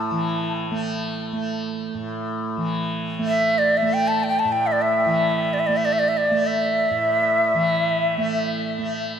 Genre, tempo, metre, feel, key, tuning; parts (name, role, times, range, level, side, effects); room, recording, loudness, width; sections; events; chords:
world meditative, free-time meditation music; free time; A4 = 442 Hz
tanpura; drone; 0.0-9.2 s; A2 to A3; -25 LUFS; right 1 dB
breathy hollow Native American-style cedar flute; melody; 3.3-8.5 s; D5 to A5; -20 LUFS; equal; ping-pong delay
wet huge ambient reverb, RT60 5.9 s; -19 LUFS; side -8 dB against mid
0.0-9.2 A section